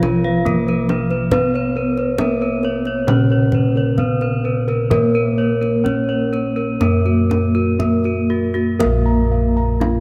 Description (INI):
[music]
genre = Javanese gamelan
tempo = 59-70 BPM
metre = 4/4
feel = straight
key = Bb pelog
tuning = A4 = 440 Hz
[part]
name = gamelan-type bronze metallophone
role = melody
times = 0.0-10.0 s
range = Bb3 to F4-30c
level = -24 LUFS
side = equal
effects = none
[part]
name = gamelan-type bronze metallophone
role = accompaniment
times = 0.0-10.0 s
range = Db3-30c to Cb4+20c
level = -25 LUFS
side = equal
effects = none
[part]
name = gamelan-type bossed gongs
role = arpeggios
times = 0.0-10.0 s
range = Gb4-20c to Bb5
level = -27 LUFS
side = equal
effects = none
[part]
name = gamelan-type bronze metallophone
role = arpeggios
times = 0.0-8.8 s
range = Gb4-20c to F5-30c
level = -29 LUFS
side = equal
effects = none
[part]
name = gamelan-type bossed gongs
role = bass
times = 0.0-10.0 s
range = Bb1 to Cb5+20c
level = -21 LUFS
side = equal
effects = none
[part]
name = kendang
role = percussion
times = 0.0-10.0 s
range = none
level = -28 LUFS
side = equal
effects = none
[sound]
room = moderate cathedral reverb, RT60 5.5 s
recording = in a vast, echoing space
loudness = -17 LUFS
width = mono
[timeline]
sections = 0.0-8.8 A section; 8.8-10.0 B section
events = none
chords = none